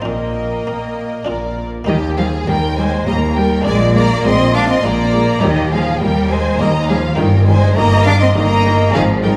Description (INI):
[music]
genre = classical, baroque-style concerto movement with solo episodes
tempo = 102 BPM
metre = 3/4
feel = straight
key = Eb major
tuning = A4 = 440 Hz
[part]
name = warm cello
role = melody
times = 0.0-9.3 s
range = Eb3 to D4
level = -21 LUFS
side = equal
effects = none
[part]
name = warm symphonic violin section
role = melody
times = 0.0-9.3 s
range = Eb5 to D6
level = -25 LUFS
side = equal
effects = none
[part]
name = rich studio violin section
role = second line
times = 0.0-9.4 s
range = G4 to F5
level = -23 LUFS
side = equal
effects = none
[part]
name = buff-stop harpsichord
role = accompaniment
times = 0.0-9.4 s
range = Eb2 to F4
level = -29 LUFS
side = equal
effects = none
[part]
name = rich studio viola section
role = accompaniment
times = 0.0-9.3 s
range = Eb3 to Bb4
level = -26 LUFS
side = equal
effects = none
[part]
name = rich chamber double bass section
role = bass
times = 0.0-9.4 s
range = G1 to Bb2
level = -21 LUFS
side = equal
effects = none
[part]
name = warm chamber cello section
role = bass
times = 0.0-9.4 s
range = Eb2 to Bb3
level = -23 LUFS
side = equal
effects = none
[sound]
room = wet recital hall reverb, RT60 1.8 s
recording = recorded in a church or concert hall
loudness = -15 LUFS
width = mono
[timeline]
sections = 0.0-1.9 A section; 1.9-9.4 B section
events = none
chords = 0.0 Eb/Bb; 1.3 Bb; 1.9 Eb; 3.7 Bb7; 5.4 Eb; 7.2 Eb/G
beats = | 0.05 0.66 1.27 | 1.88 2.48 3.07 | 3.66 4.25 4.84 | 5.43 6.01 6.60 | 7.18 7.77 8.36 | 8.95